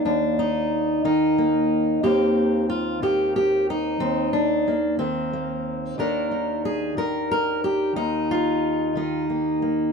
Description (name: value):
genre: folk, solo fingerstyle acoustic guitar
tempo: 61 BPM (dotted quarters)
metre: 6/8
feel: straight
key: Eb major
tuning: A4 = 438 Hz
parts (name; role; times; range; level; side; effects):
- fingerpicked steel-string acoustic guitar; solo; 0.0-9.9 s; Eb2 to Bb4; -20 LUFS; equal; none
room: moderate studio reverb, RT60 0.7 s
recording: minimal, uncompressed stereo recording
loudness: -20 LUFS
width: side -5 dB against mid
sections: 0.0-9.9 A section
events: none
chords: 0.0 Ebmaj7(no3); 2.0 Cm7/Eb; 6.0 Eb5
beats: | 0.05 1.04 | 2.03 3.02 | 4.01 5.00 | 5.99 6.98 | 7.97 8.96